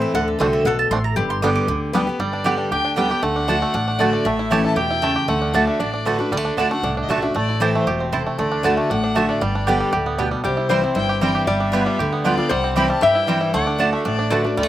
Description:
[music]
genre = bluegrass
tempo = 233 BPM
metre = 4/4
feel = straight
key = G major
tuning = A4 = 440 Hz
[part]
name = lap resonator guitar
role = second line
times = 0.0-2.2, 10.4-14.7 s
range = G4 to E5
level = -24 LUFS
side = left 4 dB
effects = slapback echo
[part]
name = picked steel-string acoustic guitar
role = accompaniment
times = 0.0-14.7 s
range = G2 to G4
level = -21 LUFS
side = left 1 dB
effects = slapback echo
[part]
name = mandolin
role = stabs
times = 0.0-14.4 s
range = A3 to D6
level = -23 LUFS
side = right 5 dB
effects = slapback echo
[part]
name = upright bass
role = bass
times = 0.0-14.7 s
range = E1 to G2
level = -27 LUFS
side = right 1 dB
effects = none
[part]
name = bluegrass banjo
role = melody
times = 0.4-14.7 s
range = G3 to G4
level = -24 LUFS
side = right 3 dB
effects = slapback echo
[part]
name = dark fiddle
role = melody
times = 2.2-14.7 s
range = A4 to B5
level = -26 LUFS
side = left 2 dB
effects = slapback echo
[sound]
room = little or no reverb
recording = recorded outdoors, with no room sound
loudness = -17 LUFS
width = side -13 dB against mid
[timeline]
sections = 0.0-2.2 A section; 2.2-14.7 B section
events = mandolin solo 0.0-2.2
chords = 0.1 D7; 1.2 G; 3.2 D; 4.3 A; 5.3 D; 7.4 Am; 8.4 D; 9.4 G; 10.4 C; 11.5 G7; 12.5 C; 13.5 D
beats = | 0.14 0.40 0.66 0.91 | 1.17 1.43 1.68 1.94 | 2.20 2.45 2.71 2.97 | 3.23 3.48 3.74 4.00 | 4.26 4.51 4.77 5.03 | 5.29 5.54 5.80 6.06 | 6.32 6.58 6.83 7.09 | 7.35 7.61 7.87 8.12 | 8.38 8.64 8.90 9.16 | 9.41 9.67 9.93 10.19 | 10.45 10.70 10.96 11.22 | 11.48 11.73 11.99 12.25 | 12.51 12.77 13.02 13.28 | 13.54 13.80 14.05 14.31 | 14.57

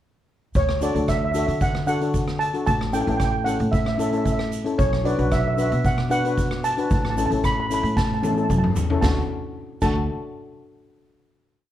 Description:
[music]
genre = calypso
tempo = 113 BPM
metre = 4/4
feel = straight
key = D major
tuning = A4 = 438 Hz
[part]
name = steel pan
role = melody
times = 0.6-10.1 s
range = C#5 to B5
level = -26 LUFS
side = right 2 dB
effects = none
[part]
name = upright bass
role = bass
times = 0.6-10.1 s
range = A1 to D3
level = -25 LUFS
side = equal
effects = none
[part]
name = street-band drum kit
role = drums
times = 0.6-9.9 s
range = crash cymbal, hi-hat, kick drum, rim click, snare drum, toms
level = -25 LUFS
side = equal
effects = none
[part]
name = tube shaker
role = percussion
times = 0.6-10.1 s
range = none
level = -44 LUFS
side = right 6 dB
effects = none
[part]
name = steel pan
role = accompaniment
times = 0.8-10.1 s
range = C#4 to B4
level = -26 LUFS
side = left 4 dB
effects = none
[sound]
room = moderate studio reverb, RT60 0.5 s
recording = worn, warbling old tape, cassette tape, warbly pitch drift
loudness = -20 LUFS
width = side -12 dB against mid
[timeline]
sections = 0.6-9.0 verse; 9.0-11.1 final chord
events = drum fill 8.0-9.0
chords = 0.6 D; 2.7 A; 4.8 Bm; 6.9 A; 9.0 D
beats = | 0.55 1.08 1.61 2.14 | 2.67 3.20 3.73 4.26 | 4.79 5.32 5.85 6.38 | 6.91 7.44 7.97 8.50 | 9.03 9.55

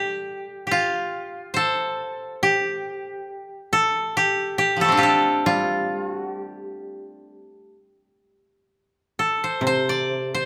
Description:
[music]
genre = japanese traditional, Japanese chamber music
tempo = 59-72 BPM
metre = 4/4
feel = rubato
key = G suspended pentatonic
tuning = A4 = 442 Hz
[part]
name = koto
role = melody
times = 0.0-10.5 s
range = F3 to D5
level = -24 LUFS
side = equal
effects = none
[part]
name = koto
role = accompaniment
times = 0.0-10.5 s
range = C3 to G3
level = -31 LUFS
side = equal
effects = none
[sound]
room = light reverb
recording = none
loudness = -22 LUFS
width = mono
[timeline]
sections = 0.0-9.6 A section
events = none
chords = none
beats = 0.74 1.59 | 2.44 3.29 4.14 5.01 | 5.89 6.78 7.69 8.67 | 9.63

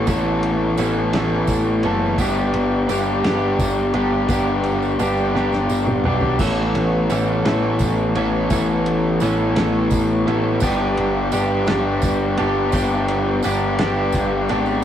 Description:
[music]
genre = indie rock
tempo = 57 BPM (dotted quarters)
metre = 6/8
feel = straight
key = unclear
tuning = A4 = 440 Hz
[part]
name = crunchy overdriven guitar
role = riff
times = 0.0-14.8 s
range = E3 to A4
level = -20 LUFS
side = left 3 dB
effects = spring reverb
[part]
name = twelve-string electric guitar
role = riff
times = 0.0-14.8 s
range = E3 to A4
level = -24 LUFS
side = right 4 dB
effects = none
[part]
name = growling picked electric bass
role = bass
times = 0.0-14.8 s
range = F#1 to B1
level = -24 LUFS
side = right 1 dB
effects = overdrive
[part]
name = cloth-damped thuddy drum kit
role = drums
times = 0.1-14.7 s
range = crash cymbal, kick drum, ride cymbal, snare drum, toms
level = -26 LUFS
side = equal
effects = none
[part]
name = tambourine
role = percussion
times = 0.1-14.8 s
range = none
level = -37 LUFS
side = right 7 dB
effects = none
[sound]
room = moderate studio reverb, RT60 0.5 s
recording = rough rehearsal-room recording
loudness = -17 LUFS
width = side -10 dB against mid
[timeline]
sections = 0.0-6.4 A section; 6.4-14.8 A section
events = drum fill 5.4-6.4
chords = 0.0 Aadd9; 2.2 G; 6.4 Aadd9; 10.6 G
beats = | 0.10 1.15 | 2.20 3.26 | 4.31 5.36 | 6.41 7.46 | 8.51 9.57 | 10.62 11.68 | 12.73 13.79

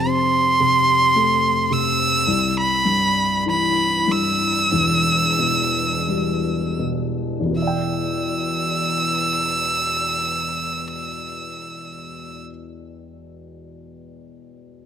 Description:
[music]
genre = acoustic folk-pop ballad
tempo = 39-56 BPM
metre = 4/4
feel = straight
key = E minor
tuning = A4 = 440 Hz
[part]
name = clear violin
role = melody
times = 0.0-12.4 s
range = A5 to E6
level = -19 LUFS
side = right 2 dB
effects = none
[part]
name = dark upright piano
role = accompaniment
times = 0.0-14.9 s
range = E1 to G5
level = -23 LUFS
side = left 2 dB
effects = none
[sound]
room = light reverb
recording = close, detailed microphones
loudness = -17 LUFS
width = side -8 dB against mid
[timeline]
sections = 0.0-7.6 A section; 7.6-13.7 B section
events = slowing down 0.0-7.6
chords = 0.0 F; 2.3 C; 4.7 Em; 7.6 Em7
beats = 0.06 1.14 | 2.27 3.46 4.72 6.08 | 7.55 9.10 10.64 12.18

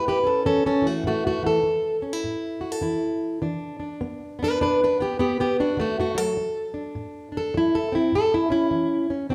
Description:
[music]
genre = acoustic country blues, solo or duo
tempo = 102 BPM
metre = 4/4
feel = swing 63% on 8ths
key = A mixolydian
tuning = A4 = 441 Hz
[part]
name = fingerpicked plugged-in steel-string acoustic guitar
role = solo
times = 0.0-9.3 s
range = A2 to B4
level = -24 LUFS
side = equal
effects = none
[sound]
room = moderate large studio reverb, RT60 1.3 s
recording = band playing live in one room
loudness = -24 LUFS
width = mono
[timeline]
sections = 0.0-9.3 A section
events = steel-string acoustic guitar solo 0.0-9.3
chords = 0.0 A; 3.4 E5; 5.8 D; 8.1 A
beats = 0.46 | 1.05 1.64 2.23 2.83 | 3.42 4.01 4.60 5.19 | 5.78 6.37 6.95 7.54 | 8.13 8.72 9.30

